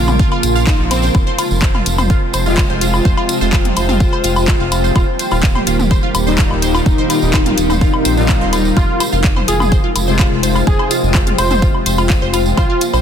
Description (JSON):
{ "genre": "melodic techno", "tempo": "126 BPM", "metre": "4/4", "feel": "straight", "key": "F minor", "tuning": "A4 = 440 Hz", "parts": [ { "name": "evolving wavetable pad", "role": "sustained chords", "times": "0.0-13.0 s", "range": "C3 to G4", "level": "-22 LUFS", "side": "right 2 dB", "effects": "chorus, built-in reverb, sidechain pumping" }, { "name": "analog synth brass", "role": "stabs", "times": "0.0-12.6 s", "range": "Bb2 to F4", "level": "-21 LUFS", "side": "left 3 dB", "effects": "chorus, sidechain pumping, digital delay" }, { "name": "round analog bass", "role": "bass", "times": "0.0-13.0 s", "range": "Eb1 to Bb1", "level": "-18 LUFS", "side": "equal", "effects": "sidechain pumping" }, { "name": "granular cloud pad", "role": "texture", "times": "0.0-13.0 s", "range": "Eb4 to C6", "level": "-22 LUFS", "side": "left 1 dB", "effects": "built-in reverb, sidechain pumping" }, { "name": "house drum kit", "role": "drums", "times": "0.1-13.0 s", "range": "handclaps, hi-hat, toms, woodblock", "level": "-20 LUFS", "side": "left 2 dB", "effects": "overdrive" }, { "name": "tambourine", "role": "percussion", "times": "0.1-13.0 s", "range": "none", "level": "-27 LUFS", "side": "right 5 dB", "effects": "none" }, { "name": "wide unison pluck", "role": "arpeggios", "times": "0.2-13.0 s", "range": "C4 to F6", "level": "-22 LUFS", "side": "right 1 dB", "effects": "phaser, sidechain pumping, digital delay" }, { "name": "electronic kick drum", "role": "drums", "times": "0.2-12.7 s", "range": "none", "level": "-14 LUFS", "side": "equal", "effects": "overdrive" }, { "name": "swell", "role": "sound effects", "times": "8.0-8.8 s", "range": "none", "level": "-26 LUFS", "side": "right 1 dB", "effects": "none" }, { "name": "wide unison lead", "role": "melody", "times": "8.8-12.8 s", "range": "F4 to C5", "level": "-21 LUFS", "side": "right 1 dB", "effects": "sidechain pumping, tape echo" } ], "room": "light reverb", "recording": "dense, heavily limited modern master", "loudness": "-12 LUFS", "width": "side -8 dB against mid", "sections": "0.0-13.0 A section", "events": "swell 8.0-8.8", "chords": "0.0 Bbm; 1.1 Fm; 5.0 Eb; 8.8 Fm", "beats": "0.20 0.67 | 1.15 1.62 2.10 2.58 | 3.05 3.53 4.00 4.48 | 4.96 5.43 5.91 6.39 | 6.86 7.34 7.81 8.29 | 8.77 9.24 9.72 10.20 | 10.67 11.15 11.62 12.10 | 12.58" }